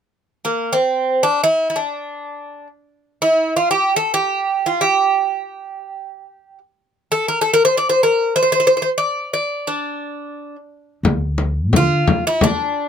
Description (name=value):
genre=Turkish makam ensemble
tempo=free time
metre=none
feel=none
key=D makam ussak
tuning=A4 = 439 Hz
part: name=Greek bouzouki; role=melody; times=0.4-12.9 s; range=Bb3 to D5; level=-16 LUFS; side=right 1 dB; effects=none
part: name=upright bass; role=bass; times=11.0-12.0 s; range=D2 to D3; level=-19 LUFS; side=equal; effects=none
part: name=frame drum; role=percussion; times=11.0-12.6 s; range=none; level=-17 LUFS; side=left 3 dB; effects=none
room=little or no reverb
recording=none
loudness=-15 LUFS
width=side -8 dB against mid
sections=0.2-11.0 A section; 11.0-12.9 B section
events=none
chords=none